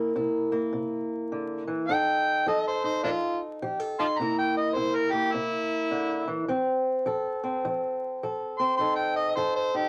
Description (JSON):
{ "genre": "acoustic country blues, solo or duo", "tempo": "104 BPM", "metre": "4/4", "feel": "swing 63% on 8ths", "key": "unclear", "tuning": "A4 = 436 Hz", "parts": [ { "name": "fingerpicked swing-style acoustic guitar", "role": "accompaniment", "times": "0.0-9.9 s", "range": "C3 to Bb4", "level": "-30 LUFS", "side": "equal", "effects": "none" }, { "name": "overdriven harmonica", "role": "melody", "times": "1.9-9.9 s", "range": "Bb3 to C6", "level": "-28 LUFS", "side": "equal", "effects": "none" } ], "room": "moderate small room reverb, RT60 0.5 s", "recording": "vinyl crackle", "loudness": "-28 LUFS", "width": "mono", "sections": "0.0-9.9 A section", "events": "harmonica solo 0.0-9.9", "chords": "0.0 C7; 1.9 F7; 4.2 C7; 6.5 F7" }